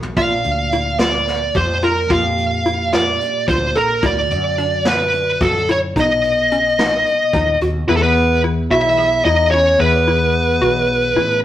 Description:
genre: progressive instrumental, band music in an uneven meter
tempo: 218 BPM (eighths)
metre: 7/8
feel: straight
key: E major from 7.9 s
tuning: A4 = 437 Hz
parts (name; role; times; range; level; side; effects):
- tine electric piano; accompaniment; 0.0-11.4 s; A#2 to E5; -26 LUFS; left 1 dB; slow stereo tremolo
- hollow square pluck; arpeggios; 0.0-11.3 s; C#4 to A4; -22 LUFS; left 1 dB; chorus
- woody fretless electric bass; bass; 0.0-11.4 s; A1 to F#2; -22 LUFS; left 1 dB; none
- vintage brush drum kit; drums; 0.0-7.7 s; hi-hat, kick drum, snare drum, toms; -23 LUFS; equal; none
- smooth overdriven lead guitar; melody; 0.2-11.4 s; A4 to E#5; -16 LUFS; equal; none
- warm flugelhorn; second line; 7.9-11.4 s; A3 to E4; -24 LUFS; left 2 dB; none
room: wet stone room reverb, RT60 0.9 s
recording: rough rehearsal-room recording, tube saturation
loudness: -14 LUFS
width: side -12 dB against mid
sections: 0.0-7.9 A section; 7.9-11.4 B section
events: drum fill 0.0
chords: 0.2 A#; 4.0 D; 6.0 B7; 7.9 E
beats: | 0.17 0.45 0.73 1.00 1.28 1.56 1.83 | 2.11 2.38 2.66 2.94 3.21 3.49 3.77 | 4.04 4.32 4.59 4.87 5.14 5.42 5.69 | 5.97 6.24 6.51 6.79 7.06 7.34 7.61 | 7.88 8.16 8.43 8.70 8.98 9.25 9.52 | 9.79 10.07 10.34 10.61 10.88 11.15 11.43

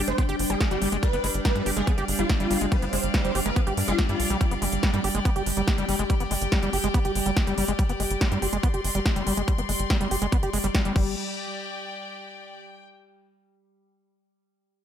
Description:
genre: psychedelic trance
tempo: 142 BPM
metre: 4/4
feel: straight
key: unclear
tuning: A4 = 440 Hz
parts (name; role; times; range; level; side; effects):
- evolving wavetable pad; sustained chords; 0.0-11.0 s; G3 to G4; -32 LUFS; equal; chorus, built-in reverb, sidechain pumping
- tight sequencer bass; bass; 0.0-11.2 s; G1 to G2; -30 LUFS; equal; none
- rich chamber string section; texture; 0.0-12.8 s; G4 to C6; -34 LUFS; left 5 dB; sidechain pumping
- swarming rave lead; melody; 0.1-4.3 s; F4 to C5; -30 LUFS; equal; chorus, phaser, sidechain pumping, digital delay
- overdriven acid bass; riff; 0.1-11.2 s; G3 to G4; -30 LUFS; moving between left 5 dB and right 5 dB; distortion, auto-pan, sidechain pumping, digital delay
- big-room dance drum kit; drums; 0.1-11.0 s; crash cymbal, hi-hat, snare drum; -30 LUFS; right 1 dB; overdrive
- electronic kick drum; drums; 0.2-11.0 s; none; -23 LUFS; equal; overdrive
room: little or no reverb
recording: none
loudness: -22 LUFS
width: side -9 dB against mid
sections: 0.0-11.2 A section; 11.2-12.9 B section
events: filter sweep on analog synth bass 0.0-11.2; filter sweep on acid bass 0.0-11.2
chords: 0.0 G5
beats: 0.18 0.60 | 1.03 1.45 1.87 2.29 | 2.72 3.14 3.56 3.99 | 4.41 4.83 5.25 5.68 | 6.10 6.52 6.94 7.37 | 7.79 8.21 8.63 9.06 | 9.48 9.90 10.32 10.75 | 11.17 11.59 12.01 12.44

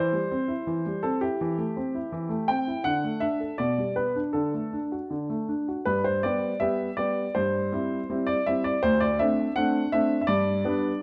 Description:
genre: classical-period piano sonatina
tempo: 82 BPM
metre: 2/4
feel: straight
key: G major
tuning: A4 = 441 Hz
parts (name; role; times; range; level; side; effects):
- clear grand piano; solo; 0.0-11.0 s; D2 to G5; -27 LUFS; equal; none
room: moderate recital hall reverb, RT60 1.4 s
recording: dark, warm production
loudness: -27 LUFS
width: mono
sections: 0.0-5.9 A section; 5.9-11.0 B section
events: none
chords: 0.0 C/E; 2.9 D; 3.6 G/B; 4.4 D; 5.9 G; 7.4 C/G; 8.8 D5; 10.3 G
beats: 0.66 | 1.39 2.12 | 2.85 3.60 | 4.35 5.11 | 5.87 6.61 | 7.36 8.09 | 8.82 9.55 | 10.28 11.01

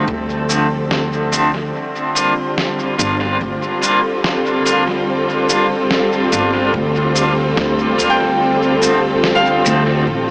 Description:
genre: ambient dub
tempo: 72 BPM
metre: 4/4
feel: straight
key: G minor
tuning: A4 = 445 Hz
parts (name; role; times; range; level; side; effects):
- warm studio string section; sustained chords; 0.0-10.3 s; D3 to A4; -17 LUFS; equal; none
- semi-hollow electric guitar; stabs; 0.0-10.0 s; D3 to F4; -18 LUFS; equal; tremolo, dub echo
- upright bass; bass; 0.0-10.3 s; G1 to D2; -21 LUFS; equal; tube saturation
- electronic kick drum; drums; 0.1-10.2 s; none; -34 LUFS; equal; none
- electronic shaker and snare drum; drums; 0.5-9.8 s; none; -22 LUFS; equal; studio ambience, dub echo
- Celtic harp; arpeggios; 8.1-10.3 s; F5 to G5; -18 LUFS; equal; tape echo
room: moderate huge ambient reverb, RT60 6.8 s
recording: small speaker sound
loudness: -13 LUFS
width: side -30 dB against mid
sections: 0.0-10.3 A section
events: none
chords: 0.0 Dm7; 1.7 Gm7; 8.4 Dm7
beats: 0.08 0.91 | 1.74 2.58 3.41 4.24 | 5.08 5.91 6.74 7.58 | 8.41 9.24 10.08

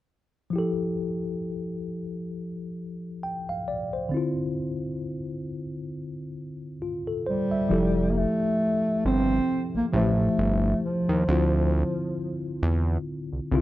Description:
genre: R&B, neo-soul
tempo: 67 BPM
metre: 4/4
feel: swing 57% on 16ths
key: F major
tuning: A4 = 440 Hz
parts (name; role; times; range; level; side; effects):
- mellow tine electric piano; accompaniment; 0.5-13.6 s; D3 to G5; -28 LUFS; left 2 dB; medium stereo tremolo
- dark bass clarinet; melody; 7.3-12.6 s; F3 to C4; -25 LUFS; right 1 dB; none
- fat analog bass; bass; 7.7-13.6 s; F1 to E2; -24 LUFS; right 1 dB; none
room: studio reverb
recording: dry, close 1970s-style studio recording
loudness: -24 LUFS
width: side -15 dB against mid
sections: 0.5-7.7 A section; 7.7-13.6 B section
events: none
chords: 0.5 Fmaj9; 4.1 Dm9; 7.7 Fmaj9; 11.3 Dm9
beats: | 0.53 1.43 2.32 3.22 | 4.12 5.01 5.91 6.80 | 7.70 8.59 9.49 10.38 | 11.28 12.17 13.07

